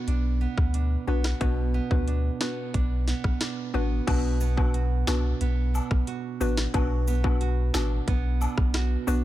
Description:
dancehall; 90 BPM; 4/4; straight; A4 = 439 Hz
hollow square pluck; accompaniment; 0.0-9.2 s; B3 to B4; -31 LUFS; left 4 dB; chorus
nylon-string guitar; arpeggios; 0.0-9.2 s; B2 to F#4; -32 LUFS; right 8 dB
punchy sub bass; bass; 0.1-9.2 s; A1 to D2; -25 LUFS; equal
island pop drum kit; drums; 0.1-8.9 s; crash cymbal, hi-hat, kick drum, rim click, snare drum; -27 LUFS; equal; overdrive, vintage 12-bit sampler grit
woodblock and cabasa; percussion; 4.1-9.2 s; -39 LUFS; left 3 dB
little or no reverb; -23 LUFS; side -14 dB against mid
0.0-4.1 A section; 4.1-9.2 B section
0.0 Bm
0.08 0.74 | 1.41 2.08 2.74 3.41 | 4.08 4.74 5.41 6.08 | 6.74 7.41 8.08 8.74

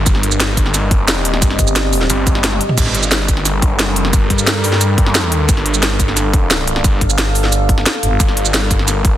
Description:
dark technical drum and bass; 177 BPM; 4/4; straight; G minor; A4 = 443 Hz
deep dark ambient pad; sustained chords; 0.0-9.2 s; G3 to F5; -21 LUFS; left 1 dB; chorus, built-in reverb, sidechain pumping
snarling distorted saw bass; bass; 0.0-9.2 s; G1 to G2; -17 LUFS; equal; distortion, overdrive
drum and bass drum kit; drums; 0.1-9.1 s; crash cymbal, hi-hat, shaker, snare drum, toms; -17 LUFS; right 1 dB; studio reverb
electronic kick drum; drums; 0.1-9.1 s; -14 LUFS; equal; studio reverb
growling FM bass; bass; 1.6-2.1, 7.0-8.2 s; G1; -16 LUFS; equal
light reverb, digital ambience; dense, heavily limited modern master; -12 LUFS; side -12 dB against mid
0.0-9.2 A section
drum fill 2.4-2.8
0.1 Cm/G; 2.8 Gm; 5.5 Dm/G; 8.2 Gm
| 0.06 0.40 0.74 1.08 | 1.42 1.76 2.10 2.44 | 2.78 3.12 3.45 3.79 | 4.13 4.47 4.81 5.15 | 5.49 5.83 6.17 6.50 | 6.84 7.18 7.52 7.86 | 8.20 8.54 8.88

